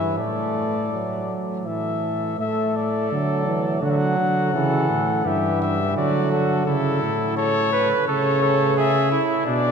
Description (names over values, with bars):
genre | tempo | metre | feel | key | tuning
classical, imitative canzona for brass ensemble | 84 BPM | 3/4 | straight | D major | A4 = 439 Hz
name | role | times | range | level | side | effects
warm trumpet | melody | 0.0-9.7 s | A4 to F#5 | -25 LUFS | left 6 dB | none
clear flugelhorn | second line | 0.0-9.7 s | D4 to B4 | -26 LUFS | right 4 dB | none
clear trombone | accompaniment | 0.0-6.7 s | E3 to A3 | -26 LUFS | right 2 dB | none
dark bass trombone | bass | 0.0-9.7 s | G2 to E3 | -24 LUFS | right 1 dB | none
room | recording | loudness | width
wet cathedral reverb, RT60 6.6 s | dark, warm production | -19 LUFS | side -6 dB against mid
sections
0.0-2.4 A section; 2.4-9.7 B section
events
none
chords
0.2 Asus4; 1.7 A5; 2.4 D/A; 3.8 D; 4.5 C#dim; 6.0 D; 6.7 A; 8.1 A/C#; 8.8 G#dim